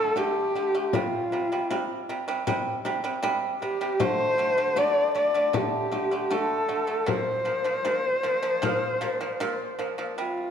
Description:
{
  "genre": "mongolian traditional, Mongolian folk",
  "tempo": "78 BPM",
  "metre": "4/4",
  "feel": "straight",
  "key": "unclear",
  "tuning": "A4 = 440 Hz",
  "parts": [
    { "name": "warm horsehead fiddle", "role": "melody", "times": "0.0-10.5 s", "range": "F4 to D5", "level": "-25 LUFS", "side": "left 1 dB", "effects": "none" },
    { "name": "pipa", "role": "arpeggios", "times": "0.0-10.5 s", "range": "Bb2 to A3", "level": "-29 LUFS", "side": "right 2 dB", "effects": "none" },
    { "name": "frame drum", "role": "percussion", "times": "0.2-9.9 s", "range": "none", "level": "-33 LUFS", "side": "left 5 dB", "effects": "none" }
  ],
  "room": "moderate recital hall reverb, RT60 1.7 s",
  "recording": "none",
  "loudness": "-24 LUFS",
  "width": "side -8 dB against mid",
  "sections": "0.0-10.2 A section",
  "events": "none",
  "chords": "0.0 D5; 0.9 C5; 4.0 D5; 7.1 Bb5"
}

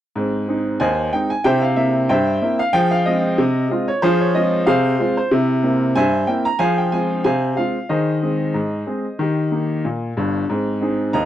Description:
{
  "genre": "ragtime piano",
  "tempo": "93 BPM",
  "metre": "2/4",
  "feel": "swing 55% on 16ths",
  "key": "Ab major",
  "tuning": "A4 = 440 Hz",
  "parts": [
    { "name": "clear upright piano", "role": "solo", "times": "0.2-11.3 s", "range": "G1 to Bb5", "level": "-16 LUFS", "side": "equal", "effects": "none" }
  ],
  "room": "moderate booth ambience, RT60 0.2 s",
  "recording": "dry, close 1970s-style studio recording",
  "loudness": "-16 LUFS",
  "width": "side -12 dB against mid",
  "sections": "0.2-11.3 A section",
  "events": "none",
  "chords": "0.2 Ab; 1.5 C7; 2.7 Fm; 5.3 C7; 6.6 Fm; 7.9 Ab/Eb; 9.2 Eb; 10.5 Ab"
}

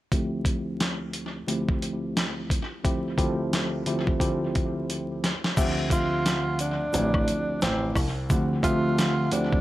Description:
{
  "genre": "hip hop, boom-bap hip-hop",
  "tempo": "88 BPM",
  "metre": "4/4",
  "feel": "swing 61% on 16ths",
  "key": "D minor",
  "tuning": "A4 = 440 Hz",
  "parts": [
    { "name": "tine electric piano", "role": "accompaniment", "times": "0.1-9.6 s", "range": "D2 to E5", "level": "-28 LUFS", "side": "equal", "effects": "overdrive, fast stereo tremolo, cassette tape, high-pass filter, low-pass filter, analog delay" },
    { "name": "dusty soul sampler-style drum kit", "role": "drums", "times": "0.1-9.6 s", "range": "crash cymbal, hi-hat, kick drum, snare drum", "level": "-27 LUFS", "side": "equal", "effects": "overdrive, analog delay" },
    { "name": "dark concert grand piano", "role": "bass", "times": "5.6-9.5 s", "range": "A1 to D2", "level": "-28 LUFS", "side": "equal", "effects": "none" },
    { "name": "tube shaker and woodblock", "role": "percussion", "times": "5.6-9.5 s", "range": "none", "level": "-39 LUFS", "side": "left 3 dB", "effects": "none" },
    { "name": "breathy tenor saxophone", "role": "melody", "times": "5.9-9.6 s", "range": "C4 to F4", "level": "-28 LUFS", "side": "right 1 dB", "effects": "high-pass filter, low-pass filter, analog delay" }
  ],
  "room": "small room ambience",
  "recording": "echo-heavy mix, vinyl crackle",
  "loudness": "-24 LUFS",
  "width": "side -15 dB against mid",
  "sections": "0.1-5.6 A section; 5.6-9.6 B section",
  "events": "filter sweep on tine electric piano 0.1-5.6; drum fill 4.9-5.6",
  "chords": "0.1 Dm11"
}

